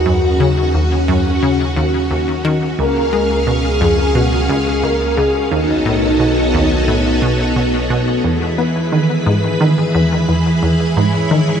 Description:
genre	ambient, sequencer-driven space music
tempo	88 BPM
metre	4/4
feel	straight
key	unclear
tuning	A4 = 440 Hz
part	breathy flute-like synth lead	melody	0.0-7.5 s	D#4 to Bb4	-20 LUFS	equal	ensemble chorus, ping-pong delay
part	string machine, full ensemble	sustained chords	0.0-11.6 s	E3 to B5	-17 LUFS	equal	ensemble chorus
part	warm sub bass	bass	0.0-8.2 s	B1 to Eb2	-20 LUFS	equal	none
part	resonant blip pluck	riff	0.1-11.6 s	Db2 to B3	-17 LUFS	equal	chorus, ping-pong delay
room	moderate huge ambient reverb, RT60 8.8 s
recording	none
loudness	-13 LUFS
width	side -8 dB against mid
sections	0.0-8.2 A section; 8.2-11.6 B section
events	none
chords	0.0 Ebm; 2.8 Db; 5.5 B7; 8.2 E

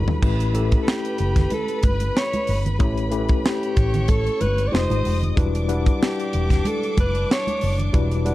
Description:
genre	lush 1970s-style soul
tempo	93 BPM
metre	4/4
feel	swing 54% on 16ths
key	unclear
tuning	A4 = 437 Hz
part	warm alto saxophone	melody	0.0-7.8 s	G4 to D5	-27 LUFS	equal	none
part	clear studio string section	second line	0.0-8.3 s	D4 to Eb6	-32 LUFS	left 1 dB	slapback echo
part	tine electric piano	accompaniment	0.0-8.3 s	F#3 to F#5	-27 LUFS	left 4 dB	overdrive, fast stereo tremolo
part	vintage muted fingered electric bass	bass	0.0-8.3 s	E1 to A1	-23 LUFS	equal	none
part	tight funk drum kit	drums	0.1-8.3 s	crash cymbal, hi-hat, kick drum, snare drum, toms	-21 LUFS	equal	none
part	congas	percussion	0.1-8.3 s	none	-30 LUFS	right 3 dB	none
room	studio ambience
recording	dark, warm production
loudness	-18 LUFS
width	side -16 dB against mid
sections	0.2-8.3 A section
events	drum fill 0.0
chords	0.2 A9; 4.7 Fm9; 5.4 Em9

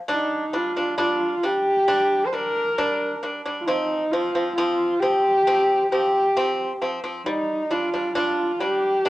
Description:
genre	mongolian traditional, Mongolian folk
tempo	67 BPM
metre	4/4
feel	straight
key	unclear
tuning	A4 = 439 Hz
part	rich horsehead fiddle	melody	0.1-9.1 s	Eb4 to C5	-21 LUFS	equal	cassette tape
part	pipa	arpeggios	0.1-9.1 s	F3 to D4	-25 LUFS	equal	cassette tape
room	moderate spring reverb, RT60 1.2 s, small room ambience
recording	home recording on cassette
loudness	-20 LUFS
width	side -16 dB against mid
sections	0.1-9.1 A section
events	none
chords	0.1 G5; 3.7 F5; 7.3 G5

